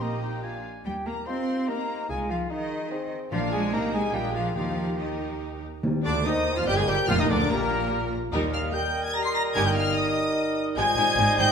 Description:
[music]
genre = quick classical-period movement for symphony orchestra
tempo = 146 BPM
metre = 3/4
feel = straight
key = Eb major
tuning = A4 = 438 Hz
[part]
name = rich studio violin section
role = melody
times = 0.0-11.5 s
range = G4 to C7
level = -30 LUFS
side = left 2 dB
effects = none
[part]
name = bright oboe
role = second line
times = 0.0-0.8, 6.1-11.5 s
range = Bb4 to Ab5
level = -34 LUFS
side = equal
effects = none
[part]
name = concert flute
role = second line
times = 0.0-11.5 s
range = Bb4 to C6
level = -33 LUFS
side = left 2 dB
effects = none
[part]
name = rich studio violin section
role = second line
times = 0.0-11.5 s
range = Bb3 to C6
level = -36 LUFS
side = left 2 dB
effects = none
[part]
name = warm clarinet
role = second line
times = 0.0-11.5 s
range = Bb3 to C5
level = -34 LUFS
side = left 2 dB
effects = none
[part]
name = rich studio viola section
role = accompaniment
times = 0.0-11.5 s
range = G3 to Ab4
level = -35 LUFS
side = right 1 dB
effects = none
[part]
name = warm bassoon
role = accompaniment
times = 0.0-11.5 s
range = Bb2 to G4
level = -34 LUFS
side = right 1 dB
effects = none
[part]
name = rich studio double bass section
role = bass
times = 0.0-11.5 s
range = F1 to Eb2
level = -32 LUFS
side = right 3 dB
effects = none
[part]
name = warm studio cello section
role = bass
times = 0.0-11.5 s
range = D2 to C4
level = -32 LUFS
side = right 2 dB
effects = none
[part]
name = timpani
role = percussion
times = 0.0-0.2, 3.3-7.7 s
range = Bb2 to Eb3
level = -32 LUFS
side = left 2 dB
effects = none
[part]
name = mellow French horn section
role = sustained chords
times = 0.4-11.5 s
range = D4 to C5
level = -34 LUFS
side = left 1 dB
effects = none
[part]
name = clear trumpet section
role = stabs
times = 6.0-11.5 s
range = Bb4 to C6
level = -30 LUFS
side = equal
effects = none
[sound]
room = wet scoring stage reverb, RT60 1.5 s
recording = minimal, uncompressed stereo recording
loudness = -23 LUFS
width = side -6 dB against mid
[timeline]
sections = 0.0-5.8 A section; 5.8-11.5 B section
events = none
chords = 0.4 Bb; 0.9 Eb; 2.1 Ab/C; 3.3 Bb; 3.7 Cm; 4.1 Bb7; 4.6 Eb; 7.1 Bb/F; 8.3 Eb; 9.5 Eb/G; 10.8 Abmaj7

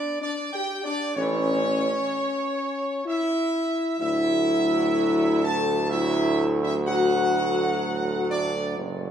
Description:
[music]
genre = classical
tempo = 63 BPM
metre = 3/4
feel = straight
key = D major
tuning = A4 = 440 Hz
[part]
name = clear trumpet section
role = melody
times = 0.0-8.7 s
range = C#5 to A5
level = -27 LUFS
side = right 2 dB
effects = none
[part]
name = mellow French horn section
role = sustained chords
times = 0.0-8.8 s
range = C#4 to A4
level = -26 LUFS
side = left 3 dB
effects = none
[part]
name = warm trombone section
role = sustained chords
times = 1.2-9.1 s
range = A2 to F#3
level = -32 LUFS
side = right 3 dB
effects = none
[part]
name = clear tuba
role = bass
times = 1.2-9.1 s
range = F#1 to D2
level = -27 LUFS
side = right 3 dB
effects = none
[sound]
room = wet recital hall reverb, RT60 1.9 s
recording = dark, warm production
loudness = -22 LUFS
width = side -9 dB against mid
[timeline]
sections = 0.0-9.1 A section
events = none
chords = 0.0 G5; 1.2 A; 4.0 Dadd9

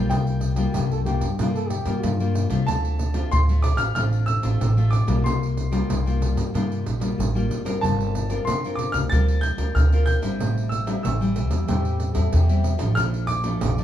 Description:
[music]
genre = samba and choro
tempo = 93 BPM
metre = 4/4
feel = straight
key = unclear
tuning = A4 = 440 Hz
[part]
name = clear concert grand piano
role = melody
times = 0.0-13.8 s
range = G5 to A6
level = -29 LUFS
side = equal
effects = none
[part]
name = nylon-string guitar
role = accompaniment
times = 0.0-13.8 s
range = F2 to Bb4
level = -27 LUFS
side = left 3 dB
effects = none
[part]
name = upright bass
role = bass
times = 0.0-13.8 s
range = G1 to G2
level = -22 LUFS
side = equal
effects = none
[part]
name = pandeiro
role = percussion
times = 0.1-13.8 s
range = none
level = -30 LUFS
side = right 6 dB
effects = none
[part]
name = warm trombone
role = second line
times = 0.7-2.5, 11.7-12.8 s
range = F4 to A4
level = -32 LUFS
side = right 1 dB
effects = none
[sound]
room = light reverb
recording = none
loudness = -20 LUFS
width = side -11 dB against mid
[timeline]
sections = 0.0-13.8 A section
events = none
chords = 0.1 C7sus4; 2.7 Dm7; 5.3 C7sus4; 7.8 Gm11; 10.4 Am7; 13.0 Bbmaj7

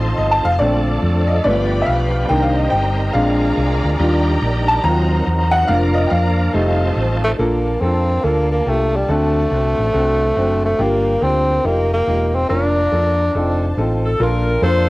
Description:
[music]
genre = uptempo gospel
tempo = 141 BPM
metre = 4/4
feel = swing 63% on 8ths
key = Bb major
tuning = A4 = 440 Hz
[part]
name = bright tonewheel organ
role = sustained chords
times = 0.0-7.4 s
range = F3 to Bb4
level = -24 LUFS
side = right 2 dB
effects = overdrive, chorus vibrato, fast rotary speaker
[part]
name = dark studio string section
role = sustained chords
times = 0.0-14.2 s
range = Bb4 to C6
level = -28 LUFS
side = left 1 dB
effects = none
[part]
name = hollow-body short-scale fingered electric bass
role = bass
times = 0.0-14.9 s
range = E1 to F2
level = -18 LUFS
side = equal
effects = none
[part]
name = clear upright piano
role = accompaniment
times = 0.2-14.9 s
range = G2 to Bb5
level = -19 LUFS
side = equal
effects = plate reverb
[part]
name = breathy tenor saxophone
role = melody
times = 7.2-14.0 s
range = G3 to D4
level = -18 LUFS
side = equal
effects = cassette tape
[part]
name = bright saxophone section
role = melody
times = 14.0-14.9 s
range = D4 to C5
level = -18 LUFS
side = left 1 dB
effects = cassette tape
[sound]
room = moderate small room ambience, RT60 0.5 s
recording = home recording on cassette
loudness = -14 LUFS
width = side -20 dB against mid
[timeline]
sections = 0.0-7.4 A section; 7.4-14.2 B section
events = upright piano solo 0.0-7.4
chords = 0.0 F7; 0.6 Bbmaj7; 1.5 G7; 2.3 Cm7; 3.1 Bb7; 4.0 Ebmaj7; 4.8 Ebm6; 5.7 Bb/F; 6.5 F7; 7.4 Bbmaj7; 9.1 D7; 10.8 Gm7; 11.6 F9sus4; 12.5 Bb/F; 13.3 F7; 14.2 Bbmaj7

